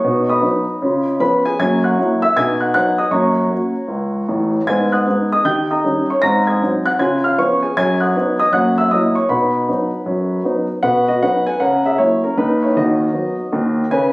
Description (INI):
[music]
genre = jazz, stride piano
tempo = 156 BPM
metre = 4/4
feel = swing 64% on 8ths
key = B major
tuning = A4 = 437 Hz
[part]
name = warm grand piano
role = solo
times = 0.0-14.1 s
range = A1 to A#6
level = -14 LUFS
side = equal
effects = none
[sound]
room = moderate club reverb, RT60 0.8 s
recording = recorded on a phone in the room, studio reverb, compression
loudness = -14 LUFS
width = side -22 dB against mid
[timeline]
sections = 0.0-10.8 A section; 10.8-14.1 B section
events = none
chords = 0.0 B; 0.8 C#7; 1.6 F#7; 2.4 B; 3.1 F#; 4.7 G#m7; 5.4 D#7; 6.2 G#7; 7.0 C#7; 7.8 B/F#; 8.5 F#7; 9.3 B; 11.6 F#7/C#; 12.4 B/D#